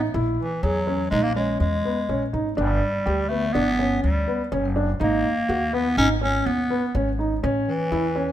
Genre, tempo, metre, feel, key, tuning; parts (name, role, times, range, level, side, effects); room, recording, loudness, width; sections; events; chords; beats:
contemporary instrumental, chamber music in an uneven meter; 124 BPM; 5/4; straight; A4 = 439 Hz
dark concert grand piano; arpeggios; 0.0-8.3 s; B3 to G#4; -25 LUFS; equal
upright bass; bass; 0.0-8.3 s; F#1 to E2; -26 LUFS; equal
growling clarinet; melody; 0.4-8.3 s; E3 to C#4; -24 LUFS; equal
light reverb; close, detailed microphones; -20 LUFS; side -11 dB against mid
0.0-8.3 A section
0.1 A#m7b5; 2.6 G; 5.0 G#m; 7.4 A
| 0.14 0.63 1.11 1.60 2.09 | 2.57 3.06 3.54 4.03 4.52 | 5.00 5.49 5.97 6.46 6.95 | 7.43 7.92